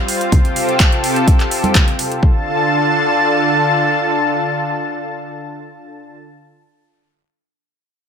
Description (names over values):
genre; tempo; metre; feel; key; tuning
progressive house; 126 BPM; 4/4; straight; D minor; A4 = 440 Hz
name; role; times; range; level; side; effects
lush unison pad; sustained chords; 0.0-6.2 s; C3 to A5; -16 LUFS; equal; chorus, sidechain pumping
big-room dance drum kit; drums; 0.1-2.2 s; handclaps, hi-hat; -20 LUFS; equal; overdrive
electronic kick drum; drums; 0.3-2.3 s; none; -13 LUFS; equal; none
congas; percussion; 0.3-1.9 s; none; -22 LUFS; right 3 dB; sidechain pumping on perc
room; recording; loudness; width
light reverb; none; -13 LUFS; side -7 dB against mid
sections
0.0-2.2 A section; 2.2-6.0 B section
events
none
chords
0.3 Fadd9/C; 2.2 Dm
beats
| 0.32 0.80 1.27 1.75 | 2.23 2.70 3.18 3.66 | 4.13 4.61 5.08 5.56